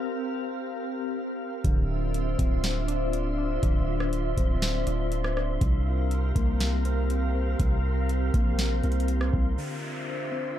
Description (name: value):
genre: hip hop, atmospheric cloud-rap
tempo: 121 BPM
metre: 4/4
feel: half-time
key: D minor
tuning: A4 = 437 Hz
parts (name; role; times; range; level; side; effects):
- glassy FM pad; sustained chords; 0.0-10.6 s; C4 to F5; -31 LUFS; left 2 dB; ensemble chorus, built-in reverb, sidechain pumping
- soft electric-piano-like synth keys; arpeggios; 1.6-10.6 s; C3 to D4; -35 LUFS; left 2 dB; chorus, ping-pong delay
- long sustained 808-style bass; bass; 1.6-9.6 s; D1 to C2; -27 LUFS; equal; none
- booming analog drum machine; drums; 1.6-9.5 s; hi-hat, kick drum, rim click, snare drum; -26 LUFS; equal; none
- wind-like tuned noise texture; texture; 2.0-10.6 s; F4 to C6; -42 LUFS; right 2 dB; built-in reverb
- downlifter; sound effects; 9.6-10.6 s; none; -38 LUFS; equal; none
room: little or no reverb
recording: dark, warm production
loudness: -24 LUFS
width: side -11 dB against mid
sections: 0.0-9.6 A section; 9.6-10.6 B section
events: none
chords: 0.0 C7sus4; 1.6 Dm9; 5.6 C7sus4; 9.6 Dm9